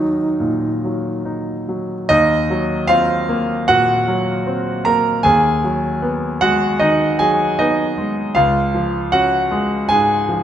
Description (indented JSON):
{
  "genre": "classical, impressionist duo for alto flute and grand piano",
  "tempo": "77 BPM",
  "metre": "4/4",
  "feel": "rubato",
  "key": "Eb minor",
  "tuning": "A4 = 438 Hz",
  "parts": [
    { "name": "mellow alto flute", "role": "melody", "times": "0.0-1.2 s", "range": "Eb4", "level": "-21 LUFS", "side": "right 1 dB", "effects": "none" },
    { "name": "clear concert grand piano", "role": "accompaniment", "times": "0.0-10.4 s", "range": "Db2 to Bb5", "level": "-15 LUFS", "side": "equal", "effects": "none" }
  ],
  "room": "moderate concert hall reverb, RT60 1.9 s",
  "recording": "none",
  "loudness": "-15 LUFS",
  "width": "side -10 dB against mid",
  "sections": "0.0-2.1 A section; 2.1-10.4 A section",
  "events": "none",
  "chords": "0.0 Ebm; 2.1 Ebm6; 5.2 Abm7/Eb; 8.4 Dbadd11"
}